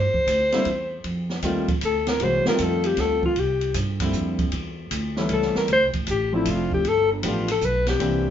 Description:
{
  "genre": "jazz, small-group swing and bop",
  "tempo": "155 BPM",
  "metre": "3/4",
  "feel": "swing 66% on 8ths",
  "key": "C mixolydian",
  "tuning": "A4 = 440 Hz",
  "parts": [
    { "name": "mellow alto saxophone", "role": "melody", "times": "0.0-8.3 s", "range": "D4 to C5", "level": "-22 LUFS", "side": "left 2 dB", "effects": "none" },
    { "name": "upright bass", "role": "bass", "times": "0.0-8.3 s", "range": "F1 to G2", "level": "-28 LUFS", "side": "right 1 dB", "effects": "none" },
    { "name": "open jazz drum kit", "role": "drums", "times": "0.1-8.1 s", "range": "hi-hat, kick drum, ride cymbal, snare drum", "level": "-29 LUFS", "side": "right 1 dB", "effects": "none" },
    { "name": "warm grand piano", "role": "accompaniment", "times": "0.5-8.3 s", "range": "D3 to G4", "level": "-26 LUFS", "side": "equal", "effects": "none" }
  ],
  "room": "moderate studio ambience, RT60 0.5 s",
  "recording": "band playing live in one room, nothing above 7.5 kHz",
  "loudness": "-20 LUFS",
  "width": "side -9 dB against mid",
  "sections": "0.0-8.3 A section",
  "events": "alto saxophone solo 0.0-8.3",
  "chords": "0.0 Cadd9; 1.0 F9; 3.4 C9; 4.5 Dsus24; 5.3 A7; 5.7 Dm7; 6.8 G9",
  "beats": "0.27 0.66 | 1.04 1.43 1.82 | 2.20 2.59 2.97 | 3.36 3.75 4.13 | 4.52 4.91 5.29 | 5.68 6.07 6.45 | 6.84 7.23 7.61 | 8.00"
}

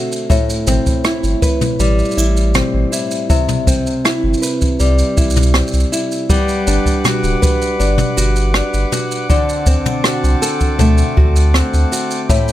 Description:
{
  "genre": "folktronica",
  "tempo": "80 BPM",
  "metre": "4/4",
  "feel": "straight",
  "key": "unclear",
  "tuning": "A4 = 440 Hz",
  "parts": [
    { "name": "nylon-string guitar", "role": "arpeggios", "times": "0.0-12.5 s", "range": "A2 to B4", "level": "-17 LUFS", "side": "left 1 dB", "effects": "tape echo" },
    { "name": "jazz brush drum kit", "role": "drums", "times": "0.1-12.5 s", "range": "rim click, shaker, toms", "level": "-20 LUFS", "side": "equal", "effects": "none" },
    { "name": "kick drum", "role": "drums", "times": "0.3-12.4 s", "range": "none", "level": "-16 LUFS", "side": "equal", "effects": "none" },
    { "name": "warm sub bass", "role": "bass", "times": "0.7-11.8 s", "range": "D1 to D2", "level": "-14 LUFS", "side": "equal", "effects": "none" },
    { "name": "accordion", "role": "sustained chords", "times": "6.3-12.5 s", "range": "C4 to D6", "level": "-23 LUFS", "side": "left 1 dB", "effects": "stereo widening" }
  ],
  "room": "studio ambience",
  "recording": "none",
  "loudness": "-13 LUFS",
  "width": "side -13 dB against mid",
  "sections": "0.0-12.5 A section",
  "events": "none",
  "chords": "0.3 Am9; 3.3 Cmaj7; 6.3 Gmaj7; 9.3 D7",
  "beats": "| 0.30 1.05 1.80 2.55 | 3.30 4.05 4.80 5.55 | 6.30 7.05 7.80 8.55 | 9.30 10.05 10.80 11.55 | 12.30"
}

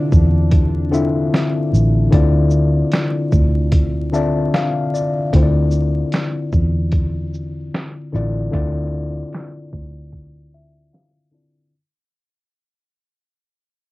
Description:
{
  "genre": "lo-fi hip hop",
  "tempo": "75 BPM",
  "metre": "4/4",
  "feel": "swing 64% on 16ths",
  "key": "unclear",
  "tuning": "A4 = 441 Hz",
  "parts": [
    { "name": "tine electric piano", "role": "accompaniment", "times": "0.0-11.7 s", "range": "D3 to A5", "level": "-20 LUFS", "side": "left 2 dB", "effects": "overdrive, fast stereo tremolo, cassette tape" },
    { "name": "warbly tape-like pad", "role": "sustained chords", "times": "0.0-5.3 s", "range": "C3 to D4", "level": "-30 LUFS", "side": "right 1 dB", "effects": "chorus, built-in reverb, cassette tape" },
    { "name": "vintage muted fingered electric bass", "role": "bass", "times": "0.1-10.9 s", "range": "A1 to E2", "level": "-18 LUFS", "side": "equal", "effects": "none" },
    { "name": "trip hop sampler-style drum kit", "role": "drums", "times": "0.1-11.2 s", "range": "hi-hat, kick drum, shaker, snare drum", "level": "-18 LUFS", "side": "equal", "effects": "vintage 12-bit sampler grit, cassette tape" }
  ],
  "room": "light reverb",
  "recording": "home recording on cassette, vinyl crackle, low-pass filter",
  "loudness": "-15 LUFS",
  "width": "side -19 dB against mid",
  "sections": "0.0-5.3 A section; 5.3-11.7 B section",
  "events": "fade-out 5.3-11.7; filter sweep 5.3-11.7; tine electric piano fill 10.1-11.7",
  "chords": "0.0 Dm9",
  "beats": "0.53 1.32 | 2.12 2.92 3.73 4.53 | 5.33 6.12 6.92 7.72 | 8.53 9.32 10.12 10.93"
}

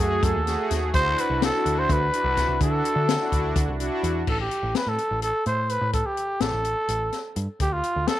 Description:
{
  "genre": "progressive instrumental, band music in an uneven meter",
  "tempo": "252 BPM (eighths)",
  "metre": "7/8",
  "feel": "straight",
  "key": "A minor",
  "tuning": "A4 = 440 Hz",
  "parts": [
    { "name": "growling trumpet", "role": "melody", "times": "0.0-8.2 s", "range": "F4 to C5", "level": "-25 LUFS", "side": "equal", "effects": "none" },
    { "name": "brassy analog pad", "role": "accompaniment", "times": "0.0-4.2 s", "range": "A3 to G#4", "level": "-28 LUFS", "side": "equal", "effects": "chorus" },
    { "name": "overdriven picked electric bass", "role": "bass", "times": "0.0-8.1 s", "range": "A1 to D3", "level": "-27 LUFS", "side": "equal", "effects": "none" },
    { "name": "open jazz drum kit", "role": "drums", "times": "0.2-8.2 s", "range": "crash cymbal, hi-hat, kick drum, snare drum", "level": "-27 LUFS", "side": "left 3 dB", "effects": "none" }
  ],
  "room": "moderate spring reverb, RT60 1.2 s, studio ambience",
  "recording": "1960s-style stereo",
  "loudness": "-22 LUFS",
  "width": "side -13 dB against mid",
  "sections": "0.0-4.3 A section; 4.3-8.2 B section",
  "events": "none",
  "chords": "0.0 F#madd9; 0.9 Dadd9; 4.3 A7(no3); 7.6 Dm",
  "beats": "0.23 0.47 0.70 | 0.94 1.18 1.42 1.65 1.89 2.13 2.37 | 2.60 2.84 3.08 3.32 3.56 3.79 4.03 | 4.27 4.51 4.75 4.98 5.22 5.46 5.70 | 5.94 6.17 6.41 6.65 6.89 7.13 7.37 | 7.60 7.84 8.08"
}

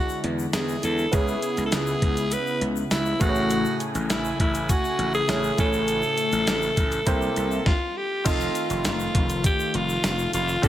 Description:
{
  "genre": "1980s-style pop",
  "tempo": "101 BPM",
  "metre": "4/4",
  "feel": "straight",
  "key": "A major",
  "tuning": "A4 = 440 Hz",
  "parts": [
    { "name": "raspy alto saxophone", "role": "melody", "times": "0.0-10.7 s", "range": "E4 to B4", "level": "-26 LUFS", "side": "equal", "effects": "tape echo" },
    { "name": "clear concert grand piano", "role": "accompaniment", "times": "0.0-10.7 s", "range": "A2 to G#5", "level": "-31 LUFS", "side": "right 2 dB", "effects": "none" },
    { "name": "brassy analog pad", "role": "sustained chords", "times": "0.0-10.7 s", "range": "C3 to G#5", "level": "-31 LUFS", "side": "left 2 dB", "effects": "chorus" },
    { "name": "egg shaker", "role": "percussion", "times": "0.1-10.7 s", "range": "none", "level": "-41 LUFS", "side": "left 9 dB", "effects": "none" },
    { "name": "gritty slap bass", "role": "bass", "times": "0.2-10.7 s", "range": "F1 to E2", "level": "-28 LUFS", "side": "equal", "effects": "overdrive" },
    { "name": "dusty soul sampler-style drum kit", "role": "drums", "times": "0.2-10.7 s", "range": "crash cymbal, hi-hat, kick drum, snare drum, tambourine", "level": "-25 LUFS", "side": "equal", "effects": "gated reverb" }
  ],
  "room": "light reverb",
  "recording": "none",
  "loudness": "-21 LUFS",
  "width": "side -12 dB against mid",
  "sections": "0.0-8.3 A section; 8.3-10.7 A section",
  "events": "none",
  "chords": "0.0 E7; 1.1 C#m7; 3.2 Amaj7; 7.1 C7; 8.3 F7",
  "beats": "0.54 | 1.13 1.72 2.32 2.91 | 3.50 4.10 4.69 5.29 | 5.88 6.47 7.07 7.66 | 8.26 8.85 9.45 10.04 | 10.63"
}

